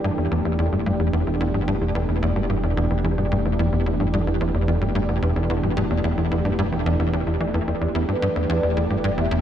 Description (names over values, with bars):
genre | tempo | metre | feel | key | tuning
ambient, sequencer-driven space music | 110 BPM | 4/4 | straight | E minor | A4 = 443 Hz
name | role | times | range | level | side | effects
sweeping resonant pad | sustained chords | 0.0-9.4 s | E3 to G4 | -26 LUFS | equal | chorus
tight sequencer bass | riff | 0.0-9.4 s | E2 to E3 | -22 LUFS | equal | wide subtle chorus, tape echo
fat analog bass | bass | 0.0-9.4 s | E1 | -28 LUFS | equal | none
mellow horn-like synth lead | melody | 8.1-9.4 s | B4 to E5 | -25 LUFS | right 1 dB | ensemble chorus, tape echo
room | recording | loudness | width
moderate plate reverb, RT60 3.9 s | echo-heavy mix | -20 LUFS | side -10 dB against mid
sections
0.0-9.4 A section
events
none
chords
0.0 Em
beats
0.45 1.00 | 1.54 2.09 2.63 3.18 | 3.72 4.27 4.82 5.36 | 5.91 6.45 7.00 7.54 | 8.09 8.63 9.18